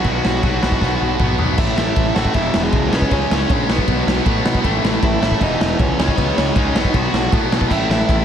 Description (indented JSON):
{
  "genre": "punk rock",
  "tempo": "157 BPM",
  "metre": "4/4",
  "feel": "straight",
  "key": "unclear",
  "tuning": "A4 = 440 Hz",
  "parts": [
    { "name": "dark smooth lead guitar", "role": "melody", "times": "0.0-8.2 s", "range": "G#3 to F#5", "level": "-24 LUFS", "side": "equal", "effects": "overdrive, tape echo" },
    { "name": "distorted electric guitar", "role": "riff", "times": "0.0-8.2 s", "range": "E2 to C#4", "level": "-19 LUFS", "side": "equal", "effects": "overdrive" },
    { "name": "fuzz picked electric bass", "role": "bass", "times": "0.0-8.2 s", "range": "E1 to B2", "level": "-22 LUFS", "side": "equal", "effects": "overdrive" },
    { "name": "raw garage drum kit", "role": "drums", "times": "0.0-8.2 s", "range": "crash cymbal, kick drum, ride cymbal, snare drum, toms", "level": "-19 LUFS", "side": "equal", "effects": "none" }
  ],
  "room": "light reverb",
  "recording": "none",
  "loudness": "-15 LUFS",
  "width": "side -9 dB against mid",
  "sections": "0.0-1.6 A section; 1.6-8.2 B section",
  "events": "drum fill 0.8-1.6",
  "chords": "0.0 B5; 1.6 A5; 2.3 E; 2.9 C#5; 3.7 B5; 4.6 A5; 5.4 E5; 6.0 C#5; 6.8 B; 7.7 A5"
}